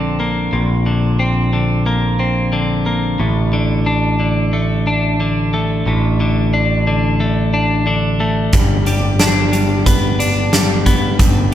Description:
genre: post-rock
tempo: 90 BPM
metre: 4/4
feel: straight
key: unclear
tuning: A4 = 441 Hz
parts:
  - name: twelve-string electric guitar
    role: arpeggios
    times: 0.0-11.5 s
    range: G2 to D4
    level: -17 LUFS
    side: left 2 dB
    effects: none
  - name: growling picked electric bass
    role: bass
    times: 0.0-11.5 s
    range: G1 to Bb1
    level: -17 LUFS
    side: equal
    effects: overdrive
  - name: huge arena drum kit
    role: drums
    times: 8.5-11.4 s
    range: hi-hat, kick drum, snare drum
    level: -15 LUFS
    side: right 1 dB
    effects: none
room: moderate concert hall reverb, RT60 1.9 s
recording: recorded in a church or concert hall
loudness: -13 LUFS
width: side -11 dB against mid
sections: 0.0-11.5 A section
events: none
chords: 0.0 Bbadd9; 3.2 D5/A; 8.5 G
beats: | 0.53 1.20 1.87 2.53 | 3.20 3.87 4.54 5.20 | 5.87 6.54 7.20 7.87 | 8.53 9.20 9.87 10.53 | 11.20

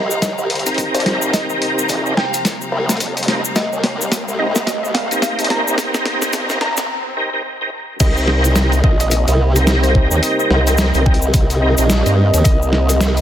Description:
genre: glitch hop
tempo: 108 BPM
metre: 4/4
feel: swing 59% on 16ths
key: C minor pentatonic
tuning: A4 = 444 Hz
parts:
  - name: woody wave-folded pluck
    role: melody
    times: 0.0-12.6 s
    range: C5 to Bb5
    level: -25 LUFS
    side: equal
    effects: chorus, dub echo
  - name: dark analog pad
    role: sustained chords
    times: 0.0-13.2 s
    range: C4 to Eb5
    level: -25 LUFS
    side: right 1 dB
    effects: chorus, sidechain pumping
  - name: tonewheel organ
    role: stabs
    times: 0.0-12.1 s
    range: C4 to Bb4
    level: -21 LUFS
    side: right 1 dB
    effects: chorus vibrato, fast rotary speaker, sidechain pumping, dub echo
  - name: formant-sweep wobble bass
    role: bass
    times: 0.0-13.2 s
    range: Bb1 to G2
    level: -17 LUFS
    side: equal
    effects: chorus, tube saturation, high-pass filter
  - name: riser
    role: sound effects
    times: 0.2-6.9 s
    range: none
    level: -31 LUFS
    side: right 1 dB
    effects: none
  - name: warm studio string section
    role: texture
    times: 0.0-6.9 s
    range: G4 to Bb5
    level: -27 LUFS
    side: left 3 dB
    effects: sidechain pumping
  - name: cabasa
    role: percussion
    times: 0.1-13.2 s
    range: none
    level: -25 LUFS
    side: left 3 dB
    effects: none
  - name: boom bap sampler-style drum kit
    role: drums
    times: 0.2-13.2 s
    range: crash cymbal, hi-hat, snare drum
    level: -21 LUFS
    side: equal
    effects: none
  - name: electronic kick drum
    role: drums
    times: 0.2-12.6 s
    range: none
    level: -16 LUFS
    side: equal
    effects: overdrive, high-pass filter on kick, high-pass filter on room
room: light reverb, digital ambience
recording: dense, heavily limited modern master, high-pass filter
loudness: -14 LUFS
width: side -11 dB against mid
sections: 0.0-8.0 A section; 8.0-13.2 B section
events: build-up 0.0-8.0; drum fill 0.0-6.9; filter sweep on synth pluck 0.0-8.0; filter sweep on analog synth pad 0.0-8.0; riser 0.2-6.9; break 6.9-8.0; drop 8.0-13.2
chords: 0.0 Cm7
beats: 0.23 0.78 | 1.34 1.89 2.45 3.00 | 3.56 4.12 4.67 5.23 | 5.78 6.34 6.89 7.45 | 8.01 8.56 9.12 9.67 | 10.23 10.78 11.34 11.89 | 12.45 13.01

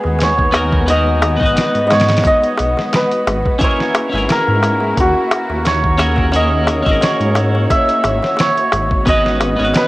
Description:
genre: trip hop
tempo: 88 BPM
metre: 4/4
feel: swing 54% on 16ths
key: unclear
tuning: A4 = 440 Hz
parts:
  - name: hammered dulcimer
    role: melody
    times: 0.0-9.9 s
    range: F#4 to E5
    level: -16 LUFS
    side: equal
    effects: tape echo
  - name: twelve-string electric guitar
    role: accompaniment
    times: 0.0-9.9 s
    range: B3 to B4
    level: -21 LUFS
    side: left 1 dB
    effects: harmonic tremolo
  - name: muted studio string section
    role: sustained chords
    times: 0.0-9.9 s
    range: G#3 to C#5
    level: -24 LUFS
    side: equal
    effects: none
  - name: dark detuned saw bass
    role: bass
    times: 0.0-9.7 s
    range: G#1 to G#2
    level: -18 LUFS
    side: equal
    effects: tube saturation
  - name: darbuka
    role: percussion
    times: 0.0-9.9 s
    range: none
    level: -22 LUFS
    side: left 1 dB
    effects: none
  - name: dusty soul sampler-style drum kit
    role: drums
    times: 0.2-9.9 s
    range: hi-hat, kick drum, snare drum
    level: -18 LUFS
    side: equal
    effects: vintage 12-bit sampler grit, small room ambience, cassette tape
room: moderate spring reverb, RT60 1.7 s, studio ambience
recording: home recording on cassette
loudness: -12 LUFS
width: side -18 dB against mid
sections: 0.0-9.9 A section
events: none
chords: 0.0 G#m7; 3.6 F#7/G#; 9.1 Bsus2/G#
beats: 0.20 | 0.88 1.56 2.25 2.93 | 3.61 4.29 4.97 5.66 | 6.34 7.02 7.70 8.38 | 9.06 9.75

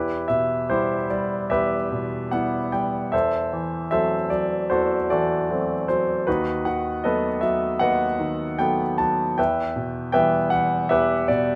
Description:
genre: classical, romantic character piece for solo piano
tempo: 72-81 BPM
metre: 4/4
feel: rubato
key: E minor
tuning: A4 = 440 Hz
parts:
  - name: bright grand piano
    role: solo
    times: 0.0-11.6 s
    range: D#2 to A5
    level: -23 LUFS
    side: equal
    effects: none
room: light reverb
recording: none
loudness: -23 LUFS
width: mono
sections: 0.0-11.6 A section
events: none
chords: 0.0 Em; 3.1 F#m7b5/E; 6.3 B7/D#; 9.4 Em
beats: 0.70 1.50 2.33 | 3.13 3.92 4.70 5.50 | 6.27 7.04 7.80 8.58 | 9.38 10.14 10.91

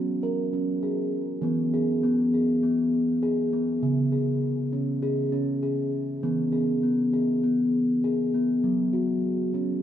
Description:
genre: world meditative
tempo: 100 BPM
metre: 4/4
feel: straight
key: E lydian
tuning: A4 = 441 Hz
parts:
  - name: steel tongue drum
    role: solo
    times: 0.0-9.8 s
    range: C#3 to A#4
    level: -23 LUFS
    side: equal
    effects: none
room: wet cathedral reverb, RT60 6.0 s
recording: in a vast, echoing space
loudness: -23 LUFS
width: side -10 dB against mid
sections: 0.0-9.8 A section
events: none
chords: 0.0 F#; 1.4 E; 3.8 C#5; 6.2 E; 8.6 F#5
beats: 0.22 0.82 | 1.43 2.03 2.63 3.23 | 3.83 4.43 5.03 5.63 | 6.24 6.84 7.44 8.04 | 8.64 9.24

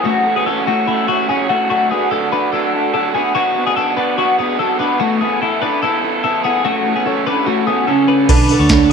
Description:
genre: jangly indie pop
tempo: 146 BPM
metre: 4/4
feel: straight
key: B dorian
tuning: A4 = 440 Hz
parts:
  - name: raw garage guitar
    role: accompaniment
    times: 0.0-8.3 s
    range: F#2 to A4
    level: -19 LUFS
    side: right 10 dB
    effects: overdrive
  - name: twelve-string electric guitar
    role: arpeggios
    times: 0.0-8.9 s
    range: A3 to C#5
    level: -16 LUFS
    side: left 6 dB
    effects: phaser, tape echo
  - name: soft octave-layered synth lead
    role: melody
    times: 7.9-8.9 s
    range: C#4 to D4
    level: -13 LUFS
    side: right 2 dB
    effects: chorus, phaser
  - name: dark upright piano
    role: accompaniment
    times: 8.3-8.9 s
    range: D4 to C#5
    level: -21 LUFS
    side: right 11 dB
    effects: none
  - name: dark studio string section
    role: sustained chords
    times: 8.3-8.9 s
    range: A4 to B5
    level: -26 LUFS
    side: equal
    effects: none
  - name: vintage muted picked electric bass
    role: bass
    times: 8.3-8.9 s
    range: B1 to D2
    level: -17 LUFS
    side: right 1 dB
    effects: none
  - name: soft vintage rhythm box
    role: drums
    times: 8.3-8.8 s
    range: crash cymbal, hi-hat, kick drum, snare drum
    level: -13 LUFS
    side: right 1 dB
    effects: overdrive
room: wet echo chamber reverb, RT60 1.8 s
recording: 1960s-style stereo with parts hard left and right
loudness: -13 LUFS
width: side -6 dB against mid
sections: 0.0-8.3 A section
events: none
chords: 0.1 F#m7; 1.7 D; 3.4 Bm; 5.0 Esus4; 6.7 F#m7; 8.3 Bm7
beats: | 0.06 0.47 0.88 1.29 | 1.71 2.12 2.53 2.94 | 3.35 3.77 4.18 4.59 | 5.00 5.42 5.83 6.24 | 6.65 7.06 7.47 7.88 | 8.29 8.70

